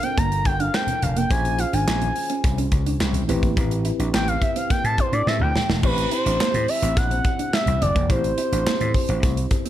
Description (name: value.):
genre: early-eighties boogie funk.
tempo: 106 BPM.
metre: 4/4.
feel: straight.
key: unclear.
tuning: A4 = 439 Hz.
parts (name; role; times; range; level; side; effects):
expressive portamento lead; melody; 0.0-9.7 s; B4 to Bb5; -24 LUFS; equal; chorus, slapback echo.
mellow tine electric piano; accompaniment; 0.0-9.7 s; B3 to C5; -30 LUFS; left 2 dB; medium stereo tremolo.
mellow electric guitar; riff; 0.0-9.7 s; A3 to F4; -30 LUFS; right 5 dB; analog chorus.
modern studio drum kit; drums; 0.0-9.7 s; crash cymbal, handclaps, hi-hat, kick drum, snare drum; -24 LUFS; equal; gated reverb.
vintage slap bass; bass; 0.2-9.4 s; E1 to A2; -24 LUFS; equal; none.
congas; percussion; 0.7-9.4 s; none; -31 LUFS; left 2 dB; none.
room: studio ambience.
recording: none.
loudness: -19 LUFS.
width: side -12 dB against mid.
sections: 0.0-5.8 A section; 5.8-9.7 B section.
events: analog synth lead solo 0.0-5.8; drum fill 5.3-5.8.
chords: 0.0 Gm9; 1.3 Bbm9; 3.3 Am9; 5.8 Am7.